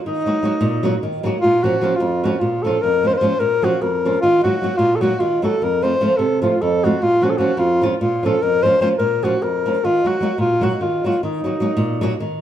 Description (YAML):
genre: balkan folk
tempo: 301 BPM (eighths)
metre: 7/8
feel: straight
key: Eb dorian sharp4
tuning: A4 = 441 Hz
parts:
  - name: mellow alto saxophone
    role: melody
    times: 0.1-12.2 s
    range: Eb4 to C5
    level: -18 LUFS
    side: left 1 dB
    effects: none
  - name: flamenco guitar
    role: accompaniment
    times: 0.1-12.4 s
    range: F2 to Gb4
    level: -20 LUFS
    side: right 1 dB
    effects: none
room: wet stone room reverb, RT60 1.0 s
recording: band playing live in one room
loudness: -16 LUFS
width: side -10 dB against mid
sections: 0.0-1.4 A section; 1.4-12.4 A section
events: none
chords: 0.0 Ebm; 1.4 Bbm; 4.2 Ebm; 5.6 F; 7.0 Bbm; 9.8 Ebm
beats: | 0.05 0.25 0.45 0.65 0.85 1.05 1.25 | 1.45 1.65 1.84 2.04 2.24 2.44 2.64 | 2.84 3.04 3.24 3.44 3.64 3.84 4.04 | 4.24 4.44 4.64 4.84 5.04 5.24 5.43 | 5.63 5.83 6.03 6.23 6.43 6.63 6.83 | 7.03 7.23 7.43 7.63 7.83 8.03 8.23 | 8.43 8.63 8.83 9.03 9.23 9.43 9.63 | 9.83 10.03 10.23 10.43 10.62 10.82 11.03 | 11.22 11.42 11.62 11.82 12.02 12.22